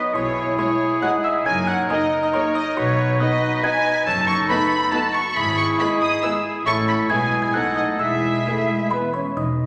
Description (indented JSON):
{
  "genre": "cinematic, playful, whimsical film cue",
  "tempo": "137 BPM",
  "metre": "3/4",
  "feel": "straight",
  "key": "B major, E major from 4.1 s",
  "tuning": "A4 = 440 Hz",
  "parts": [
    { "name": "music box", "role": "melody", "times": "0.0-9.7 s", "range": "B5 to E7", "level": "-30 LUFS", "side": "equal", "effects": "none" },
    { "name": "clear oboe", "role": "second line", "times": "0.0-9.1 s", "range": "G#4 to B4", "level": "-29 LUFS", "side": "equal", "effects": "none" },
    { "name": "warm clarinet", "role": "second line", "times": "0.0-9.1 s", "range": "B3 to E4", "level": "-30 LUFS", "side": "equal", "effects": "none" },
    { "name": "mellow bassoon", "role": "accompaniment", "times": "0.0-9.1 s", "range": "B3 to F#4", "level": "-30 LUFS", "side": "equal", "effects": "none" },
    { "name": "rich studio violin section", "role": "melody", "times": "0.1-8.9 s", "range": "C#5 to E6", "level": "-28 LUFS", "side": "equal", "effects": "none" },
    { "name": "hollow concert flute", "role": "second line", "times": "0.1-9.7 s", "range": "B4 to E6", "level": "-29 LUFS", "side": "equal", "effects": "none" },
    { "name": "rich studio cello section", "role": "bass", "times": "0.1-9.7 s", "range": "E2 to B2", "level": "-35 LUFS", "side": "equal", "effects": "none" },
    { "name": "rich studio double bass section", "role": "bass", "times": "0.1-9.7 s", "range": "E1 to B1", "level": "-31 LUFS", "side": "equal", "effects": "none" },
    { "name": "dark studio violin section", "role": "second line", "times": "0.6-9.0 s", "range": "E4 to E5", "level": "-39 LUFS", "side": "equal", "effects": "none" },
    { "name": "rich studio viola section", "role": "accompaniment", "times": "0.6-9.0 s", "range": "G#3 to E4", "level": "-38 LUFS", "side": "equal", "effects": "none" },
    { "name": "mellow French horn section", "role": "sustained chords", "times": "0.6-9.7 s", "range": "E3 to E4", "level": "-31 LUFS", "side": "equal", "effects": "none" }
  ],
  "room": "wet scoring stage reverb, RT60 2.1 s",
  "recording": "none",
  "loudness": "-20 LUFS",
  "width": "mono",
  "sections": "0.0-9.4 A section",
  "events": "none",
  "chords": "0.1 C#m/B; 1.5 F#69; 2.8 B; 4.1 B7/F#; 5.4 E/G#; 6.7 A; 7.1 E/B; 7.5 B7; 8.0 E"
}